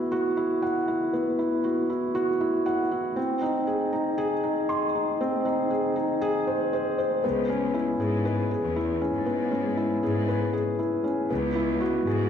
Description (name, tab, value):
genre	piano and strings electronica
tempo	118 BPM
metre	4/4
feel	straight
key	C# minor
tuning	A4 = 440 Hz
part	felt-muted upright piano	riff	0.0-12.3 s	B3 to B#5	-24 LUFS	equal	digital delay
part	clear symphonic cello section	bass	7.2-12.3 s	C#2 to G#2	-29 LUFS	left 1 dB	tube saturation
room	wet recital hall reverb, RT60 1.6 s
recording	none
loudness	-24 LUFS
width	side -8 dB against mid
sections	0.0-7.2 A section; 7.2-12.3 B section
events	build-up 0.0-7.2; drop 7.2-12.3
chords	0.0 Bsus4; 3.2 G#; 7.2 C#m7; 11.3 Eadd9/C#